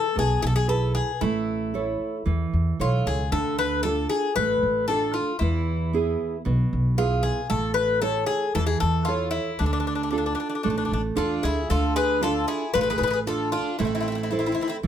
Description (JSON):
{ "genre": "greek folk, Greek bouzouki band", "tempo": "114 BPM", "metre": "4/4", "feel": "straight", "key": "D dorian sharp4", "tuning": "A4 = 440 Hz", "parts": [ { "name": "Greek bouzouki", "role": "melody", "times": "0.0-14.8 s", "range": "D4 to B4", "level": "-26 LUFS", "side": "left 4 dB", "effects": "none" }, { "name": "nylon-string guitar", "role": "accompaniment", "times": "0.0-14.9 s", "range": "B2 to C#5", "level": "-27 LUFS", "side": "right 6 dB", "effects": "none" }, { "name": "upright bass", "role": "bass", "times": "0.2-14.9 s", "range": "A1 to E2", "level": "-26 LUFS", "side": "equal", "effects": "none" }, { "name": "Greek bouzouki", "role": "second line", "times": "11.2-14.8 s", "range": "C4 to G#4", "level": "-32 LUFS", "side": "right 2 dB", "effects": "none" } ], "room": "light reverb", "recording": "none", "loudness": "-22 LUFS", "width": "side -9 dB against mid", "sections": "0.0-11.7 A section; 11.7-14.9 A section", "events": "none", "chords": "0.0 E; 1.2 A; 3.3 Dm; 5.4 E; 7.5 A; 9.6 Dm; 13.8 Am" }